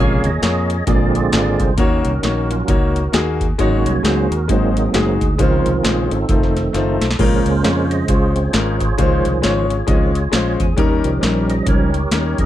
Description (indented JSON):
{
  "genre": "uptempo gospel",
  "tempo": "134 BPM",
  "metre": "4/4",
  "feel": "swing 60% on 8ths",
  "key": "Db major",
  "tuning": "A4 = 443 Hz",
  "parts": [
    { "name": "clear concert grand piano", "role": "accompaniment", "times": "0.0-12.4 s", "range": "Ab2 to Eb5", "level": "-20 LUFS", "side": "left 5 dB", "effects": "none" },
    { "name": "percussive tonewheel organ", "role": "sustained chords", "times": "0.0-12.5 s", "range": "C3 to F5", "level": "-20 LUFS", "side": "right 4 dB", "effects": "fast rotary speaker, overdrive, chorus vibrato" },
    { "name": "fingered electric bass", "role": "bass", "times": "0.0-12.5 s", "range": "F1 to F2", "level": "-20 LUFS", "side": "equal", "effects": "none" },
    { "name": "booming analog drum machine", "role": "drums", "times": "0.2-12.5 s", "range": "crash cymbal, hi-hat, kick drum, snare drum", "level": "-19 LUFS", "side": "equal", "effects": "none" }
  ],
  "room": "digital ambience",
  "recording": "dry, close 1970s-style studio recording",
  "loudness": "-14 LUFS",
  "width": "side -12 dB against mid",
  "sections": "0.0-12.5 A section",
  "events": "tonewheel organ solo 0.0-12.5; drum fill 6.7-7.2",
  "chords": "0.0 Bbm7; 0.9 Bb7; 1.8 Ebm7; 3.6 Ab7sus4; 4.5 Ab7; 5.4 Dbmaj7; 6.3 F7; 7.2 Bbm7; 9.0 Dbmaj7; 10.8 Eb7"
}